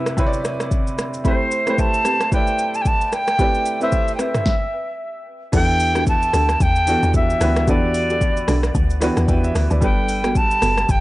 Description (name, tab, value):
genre	amapiano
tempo	112 BPM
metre	4/4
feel	swing 58% on 16ths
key	E minor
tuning	A4 = 440 Hz
part	jazz flute	melody	0.0-11.0 s	C5 to A5	-21 LUFS	equal	analog delay
part	clear grand piano	accompaniment	0.0-11.0 s	C3 to G5	-23 LUFS	right 1 dB	none
part	deep mellow chord stab	stabs	0.0-10.8 s	B3 to B5	-28 LUFS	equal	chorus, analog delay
part	deep house drum kit	drums	0.1-11.0 s	crash cymbal, hi-hat, kick drum, rim click, shaker, snare drum, toms	-21 LUFS	equal	overdrive, vintage 12-bit sampler grit
part	woody log drum bass	bass	5.5-11.0 s	F#1 to E2	-21 LUFS	equal	none
room	little or no reverb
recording	dry, gritty hardware recording, nothing above 10.5 kHz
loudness	-16 LUFS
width	side -18 dB against mid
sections	0.0-5.5 A section; 5.5-11.0 B section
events	stop 4.5-5.5; drop 5.5-11.0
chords	0.0 Cmaj7; 1.2 Am9; 5.5 Em11; 9.8 Gmaj9